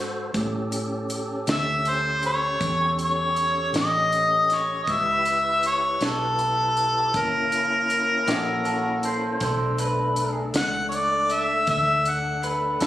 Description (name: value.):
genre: slow blues.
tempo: 53 BPM (dotted quarters).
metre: 12/8.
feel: straight.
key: A mixolydian.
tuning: A4 = 440 Hz.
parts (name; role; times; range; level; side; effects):
tonewheel organ; sustained chords; 0.0-12.9 s; A3 to B#4; -31 LUFS; equal; slow rotary speaker, overdrive, chorus vibrato.
vintage muted fingered electric bass; bass; 0.0-12.9 s; F#1 to A2; -31 LUFS; equal; none.
compact cocktail drum kit; drums; 0.3-12.9 s; hi-hat, kick drum, snare drum; -29 LUFS; equal; none.
clear harmonica; melody; 1.5-12.4 s; A4 to F#5; -22 LUFS; left 1 dB; overdrive, analog delay.
electric guitar through a small old amp; second line; 8.3-12.9 s; F#4 to C5; -26 LUFS; right 1 dB; none.
room: moderate spring reverb, RT60 2.7 s.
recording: recorded on a phone in the room, studio reverb, compression.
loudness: -21 LUFS.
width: side -13 dB against mid.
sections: 0.0-12.9 A section.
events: none.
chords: 0.3 A7; 4.9 C#m7b5; 7.1 F#7; 9.4 Bm7.